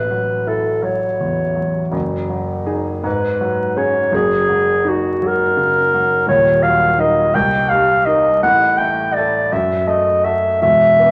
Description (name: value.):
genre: classical, impressionist duo for clarinet and grand piano.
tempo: 55 BPM (dotted quarters).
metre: 6/8.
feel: rubato.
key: unclear.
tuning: A4 = 440 Hz.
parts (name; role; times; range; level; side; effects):
dark clarinet; melody; 0.0-11.1 s; F#4 to G5; -17 LUFS; equal; none.
warm concert grand piano; accompaniment; 0.0-11.1 s; Eb1 to Bb4; -22 LUFS; equal; none.
room: wet recital hall reverb, RT60 1.6 s.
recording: vinyl crackle.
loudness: -16 LUFS.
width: mono.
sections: 0.0-11.1 A section.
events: none.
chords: 0.0 A69; 1.9 F#sus2; 3.1 G#m7; 4.1 F#69; 6.3 Ebm; 7.3 Cm7; 8.4 A5; 9.5 Gbm.